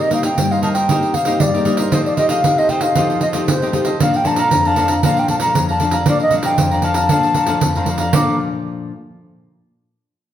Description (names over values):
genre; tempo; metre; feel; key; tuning
samba and choro; 116 BPM; 4/4; straight; Bb major; A4 = 441 Hz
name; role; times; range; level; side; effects
baroque flute; melody; 0.0-8.4 s; C5 to D6; -18 LUFS; equal; none
cavaquinho; accompaniment; 0.0-8.4 s; Eb4 to Bb5; -24 LUFS; right 2 dB; none
nylon-string guitar; accompaniment; 0.0-8.9 s; F2 to G4; -20 LUFS; left 3 dB; none
pandeiro; percussion; 0.0-8.3 s; none; -20 LUFS; right 3 dB; none
room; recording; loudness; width
wet large studio reverb, RT60 1.4 s; band playing live in one room; -14 LUFS; side -11 dB against mid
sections
0.0-8.1 A section; 8.1-10.2 B section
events
none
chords
0.0 Cm7; 1.9 F9; 4.0 Bbmaj7